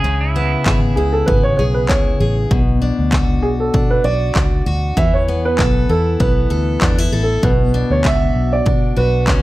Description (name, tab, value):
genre	acoustic pop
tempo	98 BPM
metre	4/4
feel	swing 55% on 16ths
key	unclear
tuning	A4 = 439 Hz
part	pedal steel guitar	second line	0.0-0.8 s	E4 to G#4	-22 LUFS	right 4 dB	tape echo
part	picked steel-string acoustic guitar	accompaniment	0.0-9.4 s	B2 to A4	-20 LUFS	left 3 dB	none
part	vintage muted fingered electric bass	bass	0.0-9.4 s	G#1 to B2	-18 LUFS	equal	none
part	punchy analog drum machine	drums	0.7-9.4 s	handclaps, kick drum	-18 LUFS	equal	none
part	dark upright piano	melody	1.0-9.4 s	G#4 to E5	-19 LUFS	right 3 dB	none
room	light reverb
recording	none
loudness	-13 LUFS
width	side -17 dB against mid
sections	0.0-9.4 A section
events	none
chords	0.0 C#m7; 2.5 Bmadd9; 5.0 Esus4; 7.4 Bmadd9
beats	| 0.04 0.66 1.28 1.89 | 2.51 3.12 3.74 4.36 | 4.97 5.59 6.20 6.82 | 7.43 8.05 8.66 9.28